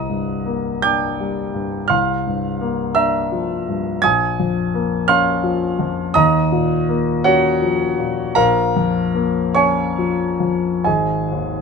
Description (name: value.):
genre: classical, impressionist solo piano.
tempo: 44-59 BPM (dotted quarters).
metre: 6/8.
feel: rubato.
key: G dorian.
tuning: A4 = 445 Hz.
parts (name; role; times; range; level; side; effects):
warm grand piano; solo; 0.0-11.6 s; Ab1 to Ab6; -16 LUFS; equal; none.
room: light reverb.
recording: close, detailed microphones.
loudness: -16 LUFS.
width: side -5 dB against mid.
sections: 0.0-11.6 A section.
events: none.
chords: 0.0 Cm9; 1.9 Gm7/C; 4.0 Bbm9; 6.2 Ebm9; 8.4 Bbm7; 10.9 Ab5.